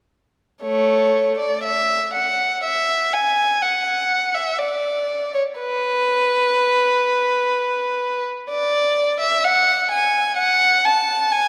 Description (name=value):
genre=classical, baroque-style suite movement for unaccompanied violin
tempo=62 BPM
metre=4/4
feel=rubato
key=unclear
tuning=A4 = 440 Hz
part: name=warm violin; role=solo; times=0.6-11.5 s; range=A3 to A5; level=-19 LUFS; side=equal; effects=none
room=wet church reverb, RT60 3.0 s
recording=none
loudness=-19 LUFS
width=mono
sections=0.6-11.5 A section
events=none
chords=none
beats=| 0.64 1.64 2.63 3.62 | 4.59 5.59 6.57 7.54 | 8.50 9.45 10.39 11.32